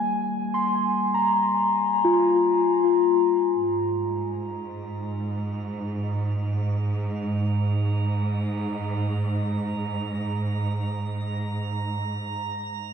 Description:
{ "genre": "ambient", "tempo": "free time", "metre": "none", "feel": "none", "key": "Ab major", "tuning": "A4 = 440 Hz", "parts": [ { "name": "muted felt-like synth keys", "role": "arpeggios", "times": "0.0-4.6 s", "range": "G3 to C6", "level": "-21 LUFS", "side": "left 3 dB", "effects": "chorus, ping-pong delay" }, { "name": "clear symphonic cello section", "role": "bass", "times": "3.5-12.9 s", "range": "Ab2", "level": "-26 LUFS", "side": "right 2 dB", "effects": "none" }, { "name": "drifting glass-harmonics texture", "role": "texture", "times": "4.6-12.9 s", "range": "Bb5", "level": "-36 LUFS", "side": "right 6 dB", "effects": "chorus, built-in reverb" } ], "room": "wet lush hall reverb, RT60 2.6 s", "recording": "dark, warm production", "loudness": "-22 LUFS", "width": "side -7 dB against mid", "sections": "0.0-3.6 A section; 3.6-12.9 B section", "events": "fade-in on synth texture 3.6-12.9", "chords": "0.0 Ab6; 3.6 Absus2" }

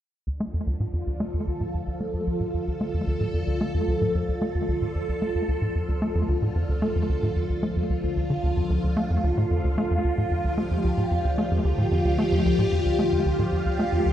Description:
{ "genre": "ambient, sequencer-driven space music", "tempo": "112 BPM", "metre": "4/4", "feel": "straight", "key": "D minor", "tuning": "A4 = 440 Hz", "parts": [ { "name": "phased string machine", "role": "sustained chords", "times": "0.3-14.1 s", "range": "D3 to A4", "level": "-26 LUFS", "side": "equal", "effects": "ensemble chorus, phaser" }, { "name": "tight sequencer bass", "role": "riff", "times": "0.3-14.1 s", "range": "D2 to A3", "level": "-24 LUFS", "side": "equal", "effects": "cassette tape, tape echo" } ], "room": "wet echo chamber reverb, RT60 1.9 s", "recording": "echo-heavy mix", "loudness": "-23 LUFS", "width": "side -11 dB against mid", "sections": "0.3-14.1 A section", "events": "filter sweep on analog synth bass 0.3-14.1", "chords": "0.3 Dm" }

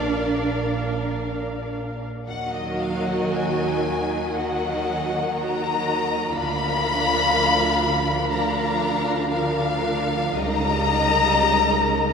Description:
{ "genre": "classical, slow romantic movement for string orchestra", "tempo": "53-63 BPM", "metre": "4/4", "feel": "rubato", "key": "Eb minor", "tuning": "A4 = 439 Hz", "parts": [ { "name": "dark symphonic violin section", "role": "melody", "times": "0.0-12.1 s", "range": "Eb5 to Cb6", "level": "-23 LUFS", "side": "left 4 dB", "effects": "none" }, { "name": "warm symphonic violin section", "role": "second line", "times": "0.0-12.1 s", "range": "Bb4 to F5", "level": "-28 LUFS", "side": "left 2 dB", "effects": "none" }, { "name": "warm symphonic viola section", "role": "accompaniment", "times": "0.0-12.1 s", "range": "F3 to F5", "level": "-28 LUFS", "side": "right 2 dB", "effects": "none" }, { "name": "rich symphonic double bass section", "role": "bass", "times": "0.0-12.1 s", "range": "Bb1 to Eb2", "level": "-29 LUFS", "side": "right 2 dB", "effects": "none" }, { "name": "warm symphonic cello section", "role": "bass", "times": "0.0-12.1 s", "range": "Db3 to D4", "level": "-30 LUFS", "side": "right 3 dB", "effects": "none" } ], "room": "wet cathedral reverb, RT60 6.7 s", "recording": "minimal, uncompressed stereo recording", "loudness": "-20 LUFS", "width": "side -6 dB against mid", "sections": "0.0-2.3 A section; 2.3-12.1 B section", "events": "none", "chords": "0.0 Bb; 2.3 Ebm; 6.3 Bb/D; 10.4 Eb7/Db" }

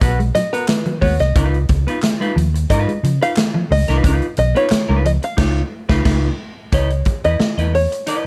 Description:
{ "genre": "funk", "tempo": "89 BPM", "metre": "4/4", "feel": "straight", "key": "unclear", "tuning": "A4 = 435 Hz", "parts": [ { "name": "open-back banjo", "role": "melody", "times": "0.0-8.3 s", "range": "B4 to E#5", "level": "-23 LUFS", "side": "equal", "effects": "none" }, { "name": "semi-hollow electric guitar", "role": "accompaniment", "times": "0.0-8.3 s", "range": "B3 to D#5", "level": "-25 LUFS", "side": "equal", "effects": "none" }, { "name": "mellow electric guitar", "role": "riff", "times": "0.0-5.2 s", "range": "E#3 to C#4", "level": "-26 LUFS", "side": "equal", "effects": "ensemble chorus" }, { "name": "vintage muted fingered electric bass", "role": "bass", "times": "0.0-7.9 s", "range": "B1 to C#3", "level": "-20 LUFS", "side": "equal", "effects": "none" }, { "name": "swinging big-band drum kit", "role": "drums", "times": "0.0-8.2 s", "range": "crash cymbal, hi-hat, kick drum, snare drum", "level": "-22 LUFS", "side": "equal", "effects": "none" }, { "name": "congas", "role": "percussion", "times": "0.0-8.2 s", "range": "none", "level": "-31 LUFS", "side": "equal", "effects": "none" }, { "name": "group handclap", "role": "percussion", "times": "0.7-4.9 s", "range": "none", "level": "-32 LUFS", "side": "equal", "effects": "none" } ], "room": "light reverb", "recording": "dark, warm production", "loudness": "-17 LUFS", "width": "mono", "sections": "0.0-6.7 A section; 6.7-8.3 B section", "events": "five-string banjo solo 0.0-6.7; band accent 5.4-6.7", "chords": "0.0 G#m9; 1.4 C#9; 6.7 C#m9" }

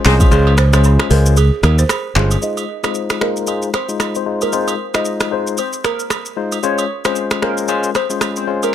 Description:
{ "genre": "afrobeats", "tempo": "114 BPM", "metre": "4/4", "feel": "swing 58% on 16ths", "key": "F minor", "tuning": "A4 = 440 Hz", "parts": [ { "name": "barky tine electric piano", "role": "accompaniment", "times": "0.0-8.7 s", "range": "Ab3 to C5", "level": "-20 LUFS", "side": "left 6 dB", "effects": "auto-pan, low-pass filter" }, { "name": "balafon", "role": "riff", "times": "0.1-2.3 s", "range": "Ab4 to C5", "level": "-22 LUFS", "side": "right 6 dB", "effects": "tape echo" }, { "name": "modern bright fingered electric bass", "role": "bass", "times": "0.1-2.4 s", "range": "G1 to Eb2", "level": "-11 LUFS", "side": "equal", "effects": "none" }, { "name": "deep house drum kit", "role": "drums", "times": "0.1-8.7 s", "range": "finger snaps, handclaps, hi-hat, kick drum, rim click, shaker", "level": "-19 LUFS", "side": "equal", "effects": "none" }, { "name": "agogo bells and woodblock", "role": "percussion", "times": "0.2-8.7 s", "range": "none", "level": "-27 LUFS", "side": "right 12 dB", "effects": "none" }, { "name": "glassy wavetable pluck", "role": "melody", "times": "2.4-8.7 s", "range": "Bb4 to Eb5", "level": "-22 LUFS", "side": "left 1 dB", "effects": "chorus, low-pass filter" } ], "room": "little or no reverb", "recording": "none", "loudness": "-14 LUFS", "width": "side -10 dB against mid", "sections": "0.0-2.4 A section; 2.4-8.7 B section", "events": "kick muted 0.3-2.4; filter sweep 2.4-8.7", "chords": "0.0 Dbmaj7; 2.4 Fm7; 6.6 Dbmaj7" }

